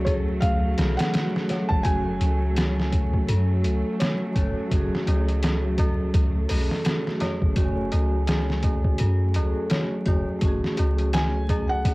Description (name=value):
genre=trip hop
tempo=84 BPM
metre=4/4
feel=swing 59% on 16ths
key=unclear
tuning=A4 = 440 Hz
part: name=felt-muted upright piano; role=melody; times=0.0-3.9, 11.1-11.9 s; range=C#5 to A5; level=-30 LUFS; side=equal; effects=cassette tape, tape echo, plate reverb
part: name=vibraphone with medium mallets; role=accompaniment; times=0.0-11.9 s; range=A3 to G#5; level=-30 LUFS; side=equal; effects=tremolo, vintage 12-bit sampler grit, tape echo
part: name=rich studio string section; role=sustained chords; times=0.0-11.9 s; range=F#3 to A3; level=-31 LUFS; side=right 1 dB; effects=vintage 12-bit sampler grit
part: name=dark detuned synth bell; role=arpeggios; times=0.0-11.9 s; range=F#4 to C#5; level=-34 LUFS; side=left 2 dB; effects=chorus, phaser, tape echo, plate reverb
part: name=soft 808-style bass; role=bass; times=0.0-11.9 s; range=F#1 to F#2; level=-24 LUFS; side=equal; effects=none
part: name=trip hop sampler-style drum kit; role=drums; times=0.1-11.9 s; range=hi-hat, kick drum, snare drum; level=-24 LUFS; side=equal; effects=overdrive, cassette tape
part: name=tabla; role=percussion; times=4.7-11.9 s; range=none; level=-38 LUFS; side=right 1 dB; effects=none
room=light reverb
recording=home recording on cassette, vinyl crackle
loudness=-21 LUFS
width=side -22 dB against mid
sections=0.0-11.9 A section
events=none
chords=0.0 F#madd9